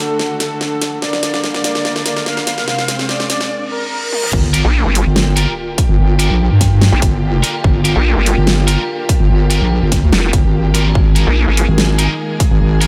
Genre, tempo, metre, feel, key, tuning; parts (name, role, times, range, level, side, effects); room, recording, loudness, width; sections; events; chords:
heavy wobble dubstep; 145 BPM; 4/4; half-time; G phrygian; A4 = 444 Hz
soft supersaw; melody; 0.0-4.3 s; A4 to F5; -24 LUFS; equal; cassette tape, tape echo
rich studio string section; sustained chords; 0.0-12.9 s; C3 to C5; -27 LUFS; equal; sidechain pumping
riser, reverse cymbal and sub drop; sound effects; 1.4-6.0 s; -29 LUFS; equal
warbly tape-like pad; texture; 0.0-12.9 s; C4 to Ab5; -28 LUFS; equal; chorus, built-in reverb, sidechain pumping
dubstep drum kit; drums; 0.2-12.9 s; crash cymbal, hi-hat, snare drum, toms; -21 LUFS; equal; high-pass filter on hats, studio reverb, high-pass filter on snare, high-pass filter on toms, high-pass filter on cymbals
wobble bass; bass; 4.3-12.9 s; G1 to G2; -15 LUFS; equal; chorus, overdrive
electronic kick drum; drums; 4.3-12.5 s; -18 LUFS; equal; studio reverb
heavy high-gain guitar; stabs; 4.5-12.9 s; Eb4 to Bb4; -25 LUFS; equal; distortion, tape echo
vowel-sweep wobble bass; bass; 4.6-11.7 s; F1 to Bb1; -15 LUFS; equal; chorus, overdrive
light reverb, digital ambience; -14 LUFS; mono
0.0-4.3 A section; 4.3-12.9 B section
build-up 0.0-4.3; drum fill 0.0-3.5, 4.1; filter sweep on supersaw synth 0.0-4.3; reverse cymbal 3.5-4.3; drop 4.3-12.9; impact 4.3-6.0
0.0 D; 1.0 Bb/D; 2.7 Fm; 4.3 Gm7; 11.0 Absus2